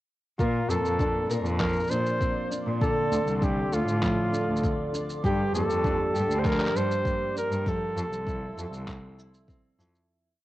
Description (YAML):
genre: folktronica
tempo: 99 BPM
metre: 4/4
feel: straight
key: unclear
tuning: A4 = 440 Hz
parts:
  - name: clear flugelhorn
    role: melody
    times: 0.4-8.9 s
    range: F4 to C5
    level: -29 LUFS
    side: equal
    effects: vintage 12-bit sampler grit
  - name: warbly tape-like pad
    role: sustained chords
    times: 1.2-10.1 s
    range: Bb3 to E6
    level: -36 LUFS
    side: right 2 dB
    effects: chorus, built-in reverb, phaser, cassette tape
  - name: nylon-string guitar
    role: arpeggios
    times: 0.4-10.4 s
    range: G2 to Bb4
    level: -32 LUFS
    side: right 1 dB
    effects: low-pass filter, cassette tape
  - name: rich cello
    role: bass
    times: 0.4-9.9 s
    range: C2 to Bb2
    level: -30 LUFS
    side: equal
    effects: none
  - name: electronic kick drum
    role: drums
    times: 0.4-9.6 s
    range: none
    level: -30 LUFS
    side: equal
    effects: cassette tape
  - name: electronic shaker and handclaps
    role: drums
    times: 0.4-10.1 s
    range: none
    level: -38 LUFS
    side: equal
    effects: cassette tape
room: light reverb, small room ambience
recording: home recording on cassette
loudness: -24 LUFS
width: side -16 dB against mid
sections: 0.4-10.1 groove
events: fade-out 6.9-10.1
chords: 0.4 Bbadd9; 2.8 Dm7; 5.2 Gm7; 7.7 Fmaj7